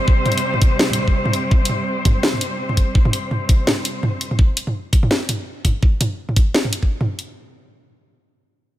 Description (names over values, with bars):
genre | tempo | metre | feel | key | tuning
half-time drum and bass | 167 BPM | 4/4 | swing 56% on 16ths, half-time | unclear | A4 = 441 Hz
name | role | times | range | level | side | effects
rich symphonic cello section | sustained chords | 0.0-4.3 s | C3 to C5 | -23 LUFS | equal | vintage 12-bit sampler grit, sidechain pumping, low-pass filter
electronic kick drum | drums | 0.1-6.9 s | none | -15 LUFS | equal | studio reverb
drum and bass drum kit | drums | 0.3-7.2 s | hi-hat, snare drum, toms | -20 LUFS | equal | studio reverb
room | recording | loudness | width
light reverb | none | -16 LUFS | side -14 dB against mid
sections
0.0-7.3 A section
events
none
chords
0.0 C5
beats
| 0.08 0.44 0.80 1.16 | 1.51 1.87 2.23 2.59 | 2.95 3.31 3.67 4.03 | 4.39 4.75 5.11 5.47 | 5.83 6.18 6.54 6.90